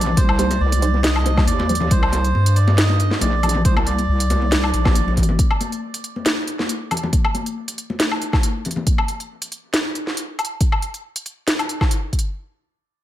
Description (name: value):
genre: deep dubstep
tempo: 138 BPM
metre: 4/4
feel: swing 54% on 16ths, half-time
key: C minor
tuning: A4 = 440 Hz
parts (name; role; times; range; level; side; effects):
- melodica; melody; 0.0-5.1 s; C5 to Eb5; -26 LUFS; right 4 dB; dub echo
- filtered dub chord stab; stabs; 0.0-1.8 s; G3 to C5; -27 LUFS; right 3 dB; none
- wobble bass; bass; 0.0-5.4 s; Bb1 to G2; -18 LUFS; equal; chorus
- garage drum kit; drums; 0.0-12.3 s; hi-hat, snare drum, woodblock; -22 LUFS; equal; none
- congas; percussion; 0.1-8.8 s; none; -27 LUFS; left 3 dB; dub echo
- electronic kick drum; drums; 0.2-12.2 s; none; -18 LUFS; equal; none
room: little or no reverb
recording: none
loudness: -17 LUFS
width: side -13 dB against mid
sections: 0.0-12.3 A section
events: filter sweep on synth stab 0.0-1.9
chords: 0.0 Cm